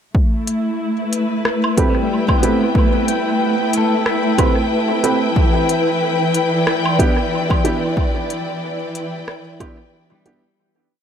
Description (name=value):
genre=ambient dub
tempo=92 BPM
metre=4/4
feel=swing 57% on 16ths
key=unclear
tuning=A4 = 440 Hz
part: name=dark studio string section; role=sustained chords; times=0.1-10.6 s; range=E3 to G5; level=-18 LUFS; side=left 1 dB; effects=none
part: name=electronic kick drum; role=drums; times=0.1-9.8 s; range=none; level=-17 LUFS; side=equal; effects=overdrive
part: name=organic electronic drum kit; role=drums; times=0.5-10.4 s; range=hi-hat, rim click, woodblock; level=-25 LUFS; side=right 1 dB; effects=dub echo
part: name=warm upright piano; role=stabs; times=1.8-10.4 s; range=B3 to B4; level=-23 LUFS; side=right 3 dB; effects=dub echo
part: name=pedal steel guitar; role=arpeggios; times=1.9-10.7 s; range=G3 to G5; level=-25 LUFS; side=left 2 dB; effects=tape echo
room=moderate cathedral reverb, RT60 4.6 s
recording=dreamy mix soaked in reverb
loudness=-15 LUFS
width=side -8 dB against mid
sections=0.1-10.6 groove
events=fade-out 7.1-10.6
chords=0.1 A7sus2; 5.4 Em7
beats=| 0.14 0.80 1.45 2.10 | 2.75 3.41 4.06 4.71 | 5.36 6.01 6.67 7.32 | 7.97 8.62 9.28 9.93